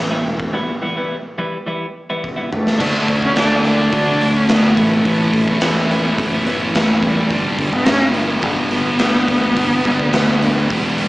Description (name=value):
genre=quiet-loud alternative rock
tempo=106 BPM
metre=4/4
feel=straight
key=unclear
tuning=A4 = 440 Hz
part: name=fingered electric bass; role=bass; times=0.0-11.1 s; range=E1 to E2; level=-22 LUFS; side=equal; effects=none
part: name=twelve-string electric guitar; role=arpeggios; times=0.1-7.3 s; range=A2 to F#4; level=-20 LUFS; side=equal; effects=none
part: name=raw garage drum kit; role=drums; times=0.4-11.1 s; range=crash cymbal, hi-hat, kick drum, snare drum, toms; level=-20 LUFS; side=equal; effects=none
part: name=warm cello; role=melody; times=2.5-11.1 s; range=G3 to D4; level=-19 LUFS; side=equal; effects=slapback echo
part: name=thick fuzz guitar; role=riff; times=2.8-11.1 s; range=G2 to A4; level=-20 LUFS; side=equal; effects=distortion
room=small room ambience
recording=live gig heard through the venue's PA, club reverb, small speaker sound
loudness=-14 LUFS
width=side -19 dB against mid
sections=0.0-2.8 A section; 2.8-11.1 B section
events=break 0.5-2.8; drum fill 2.2-2.8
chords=0.3 Em; 2.8 D; 4.8 Aadd9; 7.3 G